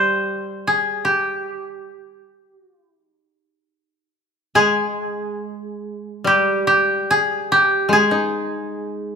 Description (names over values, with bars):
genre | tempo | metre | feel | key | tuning
japanese traditional, Japanese chamber music | 65-75 BPM | 4/4 | rubato | unclear | A4 = 440 Hz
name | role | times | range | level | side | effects
koto | melody | 0.0-9.2 s | G4 to C5 | -18 LUFS | equal | none
koto | accompaniment | 0.0-9.2 s | G3 to Eb4 | -24 LUFS | left 1 dB | none
room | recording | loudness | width
moderate recital hall reverb, RT60 1.6 s | minimal, uncompressed stereo recording | -17 LUFS | side -6 dB against mid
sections
0.0-4.6 A section; 4.6-9.2 B section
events
none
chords
none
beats
0.26 | 1.06 1.90 2.76 3.66 | 4.57 5.43 6.26 7.09 | 7.91 8.72